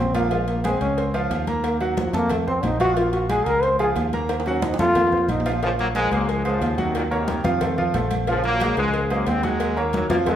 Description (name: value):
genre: latin, salsa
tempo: 181 BPM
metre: 4/4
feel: straight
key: Bb minor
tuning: A4 = 441 Hz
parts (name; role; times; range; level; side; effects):
- mellow trombone; melody; 0.0-5.5 s; Db3 to C5; -22 LUFS; equal; none
- clear grand piano; accompaniment; 0.0-10.4 s; F3 to C6; -25 LUFS; right 1 dB; none
- fingered electric bass; bass; 0.0-10.4 s; Bb1 to F2; -26 LUFS; equal; none
- agogo bells and timbales; percussion; 0.1-10.4 s; none; -30 LUFS; right 5 dB; none
- cowbell; percussion; 0.1-10.4 s; none; -33 LUFS; left 3 dB; none
- congas; percussion; 0.2-10.4 s; none; -31 LUFS; left 1 dB; none
- bright trombone section; melody; 5.6-10.4 s; Bb2 to C4; -24 LUFS; left 1 dB; none
room: moderate large studio reverb, RT60 1.3 s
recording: band playing live in one room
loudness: -19 LUFS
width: side -10 dB against mid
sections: 0.0-5.6 A section; 5.6-10.4 B section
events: trombone solo 0.0-5.6; drum fill 4.3-5.6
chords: 0.3 Bbm7; 1.0 Dbmaj7; 1.6 Ebm; 2.3 F; 3.0 Bbm7; 3.6 Dbmaj7; 4.3 Ebm; 5.0 F; 5.6 Bbm7; 6.3 Dbmaj7; 7.0 Ebm7; 7.6 F; 8.3 Bbm7; 8.9 Dbmaj7; 9.6 Ebm7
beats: | 0.32 0.65 0.98 1.31 | 1.64 1.97 2.31 2.64 | 2.97 3.30 3.63 3.96 | 4.30 4.63 4.96 5.29 | 5.62 5.96 6.29 6.62 | 6.95 7.28 7.61 7.95 | 8.28 8.61 8.94 9.27 | 9.60 9.94 10.27